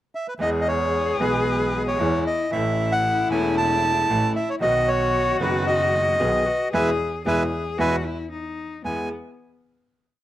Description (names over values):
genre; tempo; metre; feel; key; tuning
tango; 114 BPM; 4/4; rubato; E major; A4 = 440 Hz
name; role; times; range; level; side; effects
bandoneon; melody; 0.1-9.1 s; B4 to A5; -23 LUFS; right 1 dB; slapback echo
warm cello; second line; 0.4-9.1 s; B3 to G#4; -27 LUFS; left 5 dB; none
bright upright piano; accompaniment; 0.4-9.1 s; E1 to A4; -27 LUFS; right 2 dB; slapback echo
rich double bass; bass; 0.4-9.1 s; E1 to E2; -29 LUFS; right 1 dB; none
vibraphone with soft mallets; second line; 6.2-9.1 s; E4 to B4; -31 LUFS; left 3 dB; slapback echo
room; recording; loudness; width
little or no reverb; recorded outdoors, with no room sound; -20 LUFS; side -13 dB against mid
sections
0.0-0.4 pickup bar; 0.4-8.8 A section; 8.8-10.2 final chord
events
band accent 6.7-8.8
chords
0.4 E; 2.5 A; 4.6 B; 6.7 E; 8.3 N.C.; 8.8 E